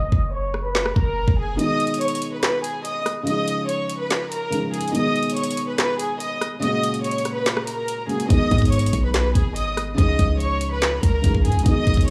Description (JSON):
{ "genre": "hip hop, trap", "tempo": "143 BPM", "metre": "4/4", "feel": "half-time", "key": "G# dorian", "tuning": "A4 = 440 Hz", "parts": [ { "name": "warm studio violin section", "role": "melody", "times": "0.0-12.1 s", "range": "G#4 to D#6", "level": "-27 LUFS", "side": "equal", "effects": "low-pass filter" }, { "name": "warm 808-style bass", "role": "bass", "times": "0.0-1.6, 8.3-12.1 s", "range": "F#1 to G#2", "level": "-25 LUFS", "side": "equal", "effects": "none" }, { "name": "trap drum kit", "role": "drums", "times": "0.1-12.1 s", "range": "handclaps, hi-hat, kick drum, rim click, snare drum", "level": "-25 LUFS", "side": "equal", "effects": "none" }, { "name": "dark concert grand piano", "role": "accompaniment", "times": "1.6-12.1 s", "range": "A#2 to G#4", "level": "-28 LUFS", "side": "equal", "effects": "low-pass filter" } ], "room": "small room ambience", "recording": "dry, gritty hardware recording, small room reverb", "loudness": "-22 LUFS", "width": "mono", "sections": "0.0-12.1 A section", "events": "break 0.0-1.6; filter sweep 0.0-1.6; kick muted 1.6-8.3", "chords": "0.0 F#add9; 1.6 G#m; 3.3 C#add9; 4.9 G#m; 6.6 F#add9; 8.3 G#m; 10.0 C#add9" }